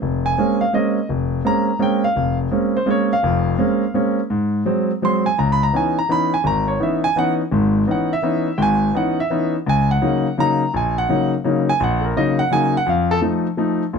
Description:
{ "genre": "jazz", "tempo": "168 BPM", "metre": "3/4", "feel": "swing 64% on 8ths", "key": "Bb minor, C# dorian from 5.4 s", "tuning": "A4 = 440 Hz", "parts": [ { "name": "warm concert grand piano", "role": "solo", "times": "0.0-14.0 s", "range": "F1 to C6", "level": "-16 LUFS", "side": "equal", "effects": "none" } ], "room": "light reverb", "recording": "close, detailed microphones", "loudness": "-16 LUFS", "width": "side -6 dB against mid", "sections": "0.0-5.4 A section; 5.4-13.9 A section", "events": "none", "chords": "0.0 Bbm9; 4.3 Ab7; 5.4 C#m9; 9.7 D#m; 12.9 F7" }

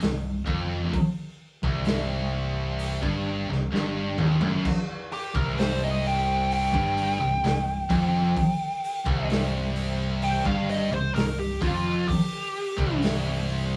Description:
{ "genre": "stoner and doom metal", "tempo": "65 BPM", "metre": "4/4", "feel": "straight", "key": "C minor", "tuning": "A4 = 441 Hz", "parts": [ { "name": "heavy high-gain guitar", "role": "riff", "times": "0.0-13.8 s", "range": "C2 to G2", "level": "-34 LUFS", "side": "equal", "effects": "distortion" }, { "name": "thick fuzz guitar", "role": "riff", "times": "0.0-13.8 s", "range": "C2 to G2", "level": "-33 LUFS", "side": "equal", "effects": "distortion" }, { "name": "thick fuzz guitar", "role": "riff", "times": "0.0-13.8 s", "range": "C2 to G2", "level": "-33 LUFS", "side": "equal", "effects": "distortion" }, { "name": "fingered electric bass", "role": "bass", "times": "0.0-13.8 s", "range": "C1 to G1", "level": "-36 LUFS", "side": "equal", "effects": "tube saturation" }, { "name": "raw garage drum kit", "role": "drums", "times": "0.0-13.7 s", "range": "crash cymbal, hi-hat, kick drum, snare drum, toms", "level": "-32 LUFS", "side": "equal", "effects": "none" }, { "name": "fuzz lead guitar", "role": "melody", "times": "5.1-13.0 s", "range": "F4 to G5", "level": "-30 LUFS", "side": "equal", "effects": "wah, distortion" } ], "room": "moderate studio reverb, RT60 0.7 s", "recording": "band playing live in one room", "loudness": "-26 LUFS", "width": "mono", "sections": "0.0-4.6 A section; 4.6-13.8 B section", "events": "drum fill 3.7-4.6; lead electric guitar solo 4.6-13.8", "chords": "0.0 Cm; 4.6 C5" }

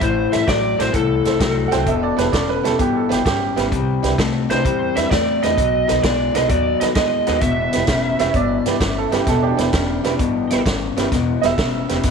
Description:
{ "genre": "electric blues shuffle", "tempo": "130 BPM", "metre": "4/4", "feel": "swing 68% on 8ths", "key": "E minor", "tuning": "A4 = 440 Hz", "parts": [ { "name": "lead guitar through a small cranked amp", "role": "melody", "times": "0.0-10.6 s", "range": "A4 to E5", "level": "-21 LUFS", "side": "right 1 dB", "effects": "overdrive, slapback echo" }, { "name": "electric guitar through a small old amp", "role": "riff", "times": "0.0-12.1 s", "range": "E2 to A3", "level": "-22 LUFS", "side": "left 11 dB", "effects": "none" }, { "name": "upright bass", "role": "bass", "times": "0.0-12.1 s", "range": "E1 to E2", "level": "-24 LUFS", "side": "right 1 dB", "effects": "none" }, { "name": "vintage drum kit", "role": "drums", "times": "0.0-12.1 s", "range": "hi-hat, kick drum, snare drum", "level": "-23 LUFS", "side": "right 1 dB", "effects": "none" }, { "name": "tack piano", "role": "accompaniment", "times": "0.3-12.0 s", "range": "B3 to C5", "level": "-26 LUFS", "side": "right 11 dB", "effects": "none" }, { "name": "bright upright piano", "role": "second line", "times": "1.7-3.6, 8.2-12.1 s", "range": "D4 to G5", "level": "-23 LUFS", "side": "right 10 dB", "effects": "slapback echo" } ], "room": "light reverb, small room ambience", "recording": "1960s-style stereo with parts hard left and right", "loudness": "-16 LUFS", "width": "side -5 dB against mid", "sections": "0.0-11.1 A section", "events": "none", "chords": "0.0 Am; 1.9 Em; 3.7 Cmaj7; 5.6 B7; 7.4 Em" }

